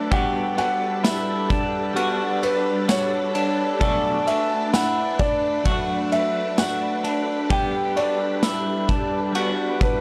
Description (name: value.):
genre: dream pop.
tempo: 65 BPM.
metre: 4/4.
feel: straight.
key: unclear.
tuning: A4 = 440 Hz.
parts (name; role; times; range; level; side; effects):
felt-muted upright piano; melody; 0.0-10.0 s; B4 to G5; -28 LUFS; equal; analog delay.
semi-hollow electric guitar; accompaniment; 0.0-10.0 s; B2 to F#4; -32 LUFS; equal; tremolo, lush chorus.
soft string machine; sustained chords; 0.0-10.0 s; G3 to B4; -29 LUFS; equal; ensemble chorus.
semi-hollow electric guitar; arpeggios; 0.0-10.0 s; D4 to A4; -29 LUFS; equal; subtle chorus, analog delay.
loose indie drum kit; drums; 0.1-10.0 s; kick drum, ride cymbal, snare drum, tambourine; -29 LUFS; equal; none.
glockenspiel with rubber mallets; texture; 3.8-10.0 s; none; barely audible; none; none.
room: light reverb, studio reverb.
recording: none.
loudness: -22 LUFS.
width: mono.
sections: 0.0-10.0 A section.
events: none.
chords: 0.1 Gmaj7; 3.8 Bm7; 7.5 Gmaj7.